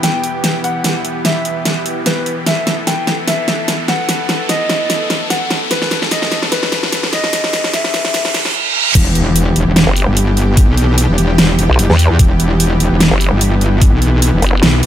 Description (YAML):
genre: heavy wobble dubstep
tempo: 148 BPM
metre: 4/4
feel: swing 54% on 16ths, half-time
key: E harmonic minor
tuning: A4 = 440 Hz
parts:
  - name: dark baby grand piano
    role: melody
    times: 0.0-8.5 s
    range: B4 to G5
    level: -20 LUFS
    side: left 1 dB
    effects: low-pass filter, ping-pong delay
  - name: supersaw pad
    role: sustained chords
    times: 0.0-14.9 s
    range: E3 to A4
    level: -22 LUFS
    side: equal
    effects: sidechain pumping
  - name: dubstep drum kit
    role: drums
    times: 0.0-14.9 s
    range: crash cymbal, hi-hat, snare drum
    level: -16 LUFS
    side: equal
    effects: overdrive
  - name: riser, reverse cymbal and impact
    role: sound effects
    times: 0.4-10.6 s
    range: none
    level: -21 LUFS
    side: right 1 dB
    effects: none
  - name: metallic wobble bass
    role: bass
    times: 8.9-14.8 s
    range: E1 to E2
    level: -12 LUFS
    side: equal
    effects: distortion, chorus, overdrive
  - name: electronic kick drum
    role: drums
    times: 8.9-13.9 s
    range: none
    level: -10 LUFS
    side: equal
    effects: none
  - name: vowel-sweep wobble bass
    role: bass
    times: 9.9-14.6 s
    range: F#1 to E2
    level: -11 LUFS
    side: equal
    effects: chorus, overdrive
room: light reverb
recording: high-pass filter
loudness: -11 LUFS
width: side -11 dB against mid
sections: 0.0-9.0 A section; 9.0-14.9 B section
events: build-up 0.0-9.0; drum fill 0.0-8.5; filter sweep 0.0-9.0; riser 0.4-8.5; reverse cymbal 8.1-9.0; drop 9.0-14.9; impact 9.0-10.6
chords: 0.0 Em